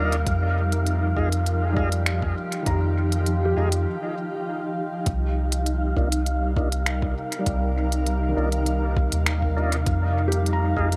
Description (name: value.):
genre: ambient dub.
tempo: 100 BPM.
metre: 4/4.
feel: straight.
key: C minor.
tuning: A4 = 439 Hz.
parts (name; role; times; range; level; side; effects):
granular cloud pad; sustained chords; 0.0-11.0 s; C3 to F5; -31 LUFS; equal; built-in reverb.
felt-muted upright piano; arpeggios; 0.0-11.0 s; Eb3 to Bb5; -34 LUFS; equal; dub echo.
tonewheel organ; stabs; 0.0-10.9 s; Ab3 to F4; -34 LUFS; equal; slow rotary speaker, vintage 12-bit sampler grit, low-pass filter, dub echo.
soft dub sub bass; bass; 0.0-11.0 s; C2 to F2; -26 LUFS; equal; none.
wind-like tuned noise texture; texture; 0.0-11.0 s; F5; -36 LUFS; equal; built-in reverb.
organic electronic drum kit; drums; 0.1-11.0 s; finger snaps, hi-hat; -32 LUFS; equal; dub echo.
electronic kick drum; drums; 0.3-10.9 s; none; -29 LUFS; equal; none.
room: little or no reverb.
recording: echo-heavy mix.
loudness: -24 LUFS.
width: mono.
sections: 0.0-5.1 A section; 5.1-11.0 A section.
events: break 3.9-5.1; filter sweep on tonewheel organ 5.1-11.0.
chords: 0.3 Fm7; 5.1 Cm11; 9.9 Fm7.